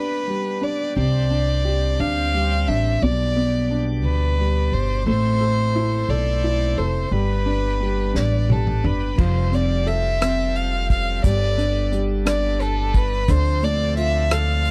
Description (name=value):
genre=six-eight pop ballad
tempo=58 BPM (dotted quarters)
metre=6/8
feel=straight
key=unclear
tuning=A4 = 440 Hz
part: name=rich violin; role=melody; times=0.0-14.7 s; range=A4 to F5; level=-27 LUFS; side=equal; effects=none
part: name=clear concert grand piano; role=accompaniment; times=0.0-14.7 s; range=B2 to A4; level=-28 LUFS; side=equal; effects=none
part: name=bright tonewheel organ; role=sustained chords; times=0.0-14.7 s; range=B2 to D5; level=-35 LUFS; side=equal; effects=overdrive, slow rotary speaker
part: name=upright bass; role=bass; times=1.0-14.7 s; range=F1 to D2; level=-24 LUFS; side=equal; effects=none
part: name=unplugged drum kit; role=drums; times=8.2-14.7 s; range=crash cymbal, hi-hat, kick drum, rim click, snare drum, toms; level=-23 LUFS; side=equal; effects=none
room=little or no reverb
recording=dry, close 1970s-style studio recording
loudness=-21 LUFS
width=mono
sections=0.0-9.2 A section; 9.2-14.7 B section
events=drum fill 8.2-9.2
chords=0.0 G; 1.0 Csus2; 3.0 G/B; 5.1 Am; 7.1 G; 9.2 Fadd9; 11.2 Gadd9; 13.3 Dm7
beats=| 0.96 1.99 | 3.02 4.04 | 5.07 6.09 | 7.12 8.15 | 9.19 10.22 | 11.24 12.26 | 13.29 14.31